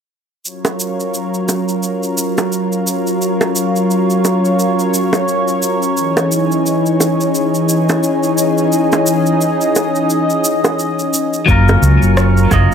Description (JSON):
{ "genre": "sunset chillout", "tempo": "87 BPM", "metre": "4/4", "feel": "swing 58% on 16ths", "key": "unclear", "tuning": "A4 = 440 Hz", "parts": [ { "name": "lush unison pad", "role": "sustained chords", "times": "0.4-12.7 s", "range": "Fb3 to Db6", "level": "-14 LUFS", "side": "equal", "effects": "chorus" }, { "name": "electronic shaker and rim click", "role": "drums", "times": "0.5-12.7 s", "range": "none", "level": "-22 LUFS", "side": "right 1 dB", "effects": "none" }, { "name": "bongos", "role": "percussion", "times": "0.6-12.7 s", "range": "none", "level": "-18 LUFS", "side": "right 2 dB", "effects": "none" }, { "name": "clean electric guitar", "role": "accompaniment", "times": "11.5-12.7 s", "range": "Gb3 to Eb5", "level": "-14 LUFS", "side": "moving between left 5 dB and right 3 dB", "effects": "auto-pan, tape echo" }, { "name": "mellow fretless electric bass", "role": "bass", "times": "11.5-12.7 s", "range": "Gb1 to Db2", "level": "-11 LUFS", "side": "equal", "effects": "none" }, { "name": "electronic kick drum", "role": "drums", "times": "11.5-12.7 s", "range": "none", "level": "-17 LUFS", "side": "equal", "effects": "none" } ], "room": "light reverb", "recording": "none", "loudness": "-12 LUFS", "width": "side -7 dB against mid", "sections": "0.5-11.5 A section; 11.5-12.7 B section", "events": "none", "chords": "0.5 Gbmaj7; 6.0 Dbmadd9; 11.5 Gbmaj7", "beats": "| 0.45 1.14 1.83 2.52 | 3.21 3.90 4.59 5.28 | 5.97 6.66 7.35 8.04 | 8.73 9.42 10.11 10.80 | 11.49 12.18" }